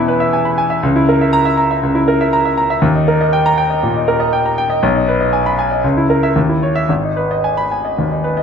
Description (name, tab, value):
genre	classical, virtuoso piano study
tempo	119 BPM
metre	4/4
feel	uneven beats, rubato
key	G# minor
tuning	A4 = 440 Hz
part	clear grand piano	solo	0.0-8.4 s	G#1 to B5	-12 LUFS	equal	none
room	wet large studio reverb, RT60 1.2 s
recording	none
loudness	-12 LUFS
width	side -6 dB against mid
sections	0.0-8.4 A section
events	none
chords	0.0 E; 0.8 A#dim/C#; 2.8 D#; 4.8 G#m/B; 5.8 A#dim/C#; 6.4 C#madd9/D#; 6.9 G#m